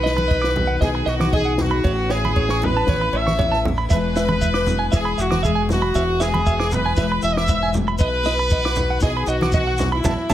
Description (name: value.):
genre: highlife guitar band.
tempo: 117 BPM.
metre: 4/4.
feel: straight.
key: E major.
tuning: A4 = 445 Hz.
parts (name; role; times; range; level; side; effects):
clear horn section; melody; 0.0-10.3 s; E4 to E5; -22 LUFS; equal; tape echo.
picked steel-string acoustic guitar; accompaniment; 0.0-10.3 s; E2 to G#4; -27 LUFS; left 7 dB; none.
clean electric guitar; arpeggios; 0.0-10.3 s; C#5 to D6; -26 LUFS; right 6 dB; tape echo.
fingered electric bass; bass; 0.0-10.3 s; E1 to B1; -24 LUFS; equal; none.
compact cocktail drum kit; drums; 0.1-10.3 s; kick drum, snare drum; -23 LUFS; equal; none.
congas; percussion; 0.2-10.3 s; none; -25 LUFS; right 2 dB; none.
shekere; percussion; 3.9-10.3 s; none; -28 LUFS; left 1 dB; none.
room: light reverb.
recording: none.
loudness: -17 LUFS.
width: side -12 dB against mid.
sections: 0.0-10.3 A section.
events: band accent 10.0.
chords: 0.0 B; 1.8 Aadd9; 3.9 E; 8.0 B.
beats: 0.31 0.82 1.33 | 1.84 2.35 2.87 3.38 | 3.89 4.40 4.92 5.43 | 5.94 6.45 6.97 7.48 | 7.99 8.51 9.02 9.53 | 10.04.